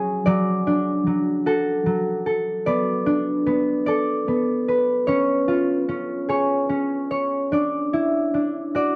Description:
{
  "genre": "children's music, lullaby",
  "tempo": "50 BPM (dotted quarters)",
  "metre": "6/8",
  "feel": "straight",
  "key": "unclear",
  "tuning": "A4 = 440 Hz",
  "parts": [
    { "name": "concert harp", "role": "solo", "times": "0.0-9.0 s", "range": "F#3 to D5", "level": "-22 LUFS", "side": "equal", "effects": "tape echo" }
  ],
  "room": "little or no reverb",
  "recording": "dry, close 1970s-style studio recording",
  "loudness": "-22 LUFS",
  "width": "mono",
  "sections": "0.0-9.0 A section",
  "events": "none",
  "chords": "0.3 D/F#; 2.7 Bm7; 5.1 C#; 7.5 Dadd9"
}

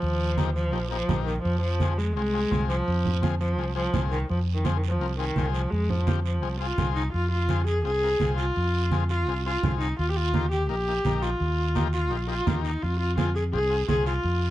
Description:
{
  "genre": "latin, cumbia",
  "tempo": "169 BPM",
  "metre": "4/4",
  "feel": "straight",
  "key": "F minor",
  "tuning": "A4 = 442 Hz",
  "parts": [
    { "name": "rich viola", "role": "melody", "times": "0.0-14.5 s", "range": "Eb3 to Ab4", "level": "-28 LUFS", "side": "equal", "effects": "none" },
    { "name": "fingered electric bass", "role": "bass", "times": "0.0-14.5 s", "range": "Bb1 to F2", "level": "-26 LUFS", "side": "equal", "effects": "none" },
    { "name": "congas", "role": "percussion", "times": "0.0-14.4 s", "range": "none", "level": "-29 LUFS", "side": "right 3 dB", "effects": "none" },
    { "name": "guiro", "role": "percussion", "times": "0.0-14.5 s", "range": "none", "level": "-42 LUFS", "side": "right 15 dB", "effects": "none" },
    { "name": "overdriven combo organ", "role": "accompaniment", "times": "0.4-14.1 s", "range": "Bb3 to Bb4", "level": "-35 LUFS", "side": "left 11 dB", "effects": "none" }
  ],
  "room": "small room reverb",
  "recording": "dry, close 1970s-style studio recording",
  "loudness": "-23 LUFS",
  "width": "side -14 dB against mid",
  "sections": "0.0-7.1 A section; 7.1-14.5 A section",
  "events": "none",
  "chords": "0.0 Eb; 1.4 Fm; 10.0 Eb; 12.8 Fm"
}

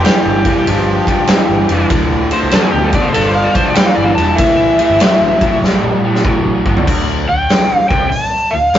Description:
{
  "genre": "blues rock power trio and southern rock",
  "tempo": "97 BPM",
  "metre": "4/4",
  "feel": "swing 66% on 8ths",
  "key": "D minor",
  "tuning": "A4 = 444 Hz",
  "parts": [
    { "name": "overdriven slide guitar", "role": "melody", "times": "0.0-8.8 s", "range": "G4 to A5", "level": "-15 LUFS", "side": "left 1 dB", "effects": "none" },
    { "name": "raw garage guitar", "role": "riff", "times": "0.0-8.8 s", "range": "D2 to G3", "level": "-15 LUFS", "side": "equal", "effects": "overdrive" },
    { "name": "huge arena drum kit", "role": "drums", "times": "0.0-8.8 s", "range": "crash cymbal, hi-hat, kick drum, ride cymbal, snare drum, toms", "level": "-14 LUFS", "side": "equal", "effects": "none" },
    { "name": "vintage muted fingered electric bass", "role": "bass", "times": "0.2-8.8 s", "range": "D1 to D2", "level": "-21 LUFS", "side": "equal", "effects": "none" }
  ],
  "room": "light reverb",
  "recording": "rough rehearsal-room recording, nothing above 7.6 kHz",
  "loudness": "-10 LUFS",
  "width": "side -11 dB against mid",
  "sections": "0.0-6.9 A section; 6.9-8.8 B section",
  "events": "electric slide guitar solo 0.0-6.9; drum fill 5.6-6.9",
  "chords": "0.0 G5; 1.9 D5; 3.1 G5; 4.4 A5; 6.9 D5"
}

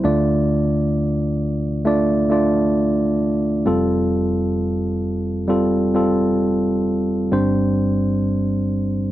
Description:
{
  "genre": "folk",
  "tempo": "66 BPM",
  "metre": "4/4",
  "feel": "straight",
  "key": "unclear",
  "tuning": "A4 = 438 Hz",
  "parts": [
    { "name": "tine electric piano", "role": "solo", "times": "0.0-9.1 s", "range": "F1 to D5", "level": "-17 LUFS", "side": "equal", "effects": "none" }
  ],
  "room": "little or no reverb",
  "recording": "dry, close 1970s-style studio recording",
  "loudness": "-17 LUFS",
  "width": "side -14 dB against mid",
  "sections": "0.0-9.1 A section",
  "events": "none",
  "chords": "0.0 Dm; 3.7 Fadd9; 7.3 Gsus4"
}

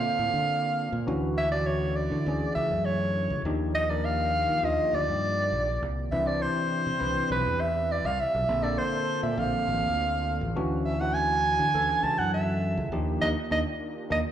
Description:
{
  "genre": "jazz",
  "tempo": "101 BPM",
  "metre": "4/4",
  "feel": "straight",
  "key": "unclear",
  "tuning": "A4 = 442 Hz",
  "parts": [
    { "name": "warm soprano saxophone", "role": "melody", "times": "0.0-14.2 s", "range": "B4 to A5", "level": "-27 LUFS", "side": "right 2 dB", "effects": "slapback echo, tape echo" },
    { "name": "tine electric piano", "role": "accompaniment", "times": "0.0-14.2 s", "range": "D3 to C5", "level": "-32 LUFS", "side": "left 2 dB", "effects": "analog chorus" },
    { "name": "brassy analog pad", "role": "sustained chords", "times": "0.0-14.3 s", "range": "C3 to D5", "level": "-38 LUFS", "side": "right 1 dB", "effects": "chorus" },
    { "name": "fingered electric bass", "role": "bass", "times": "0.0-14.2 s", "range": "A1 to Eb3", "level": "-30 LUFS", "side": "equal", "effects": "none" }
  ],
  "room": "light reverb, digital ambience",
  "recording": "live gig heard through the venue's PA, club reverb",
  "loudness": "-24 LUFS",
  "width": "side -10 dB against mid",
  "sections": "0.0-14.3 A section",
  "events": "band accent 13.2-14.3",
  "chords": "0.0 Bbmaj9; 1.1 Dmaj9; 3.5 Ebmaj9; 6.1 Cmaj9; 8.5 Bbmaj9; 10.6 Dmaj9; 12.9 Ebmaj9"
}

